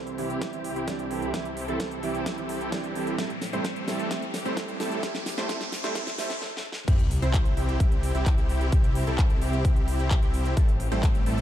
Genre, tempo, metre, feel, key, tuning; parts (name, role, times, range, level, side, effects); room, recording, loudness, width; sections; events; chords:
EDM, festival progressive house; 130 BPM; 4/4; straight; C major; A4 = 440 Hz
warm baby grand piano; accompaniment; 0.0-6.3 s; E3 to A4; -33 LUFS; right 6 dB; sidechain pumping, ping-pong delay
clear symphonic string section; sustained chords; 0.0-11.4 s; C2 to A4; -38 LUFS; left 1 dB; sidechain pumping, low-pass filter
dense compressed supersaw; riff; 0.0-11.4 s; G3 to C5; -32 LUFS; equal; sidechain pumping, low-pass filter, ping-pong delay
riser and sub drop; sound effects; 1.0-8.7 s; -36 LUFS; equal
big-room dance drum kit; drums; 0.1-11.4 s; crash cymbal, handclaps, hi-hat, snare drum; -35 LUFS; equal
electronic kick drum; drums; 0.4-11.1 s; -23 LUFS; equal; high-pass filter on kick, high-pass filter on room
detuned saw bass; bass; 6.9-11.4 s; A1 to C2; -28 LUFS; equal; sidechain pumping
light reverb, digital ambience; dark, warm production, high-pass filter; -24 LUFS; side -12 dB against mid
0.0-6.9 A section; 6.9-11.4 B section
build-up 0.0-6.9; drum fill 0.0-6.4, 6.4-6.9; filter sweep on supersaw synth 0.0-6.9; filter sweep 0.0-6.9; riser 1.0-6.4; stop 6.4-6.9; drop 6.9-11.4; impact 6.9-8.7
0.0 C; 3.2 Am7; 6.9 C; 10.6 Am7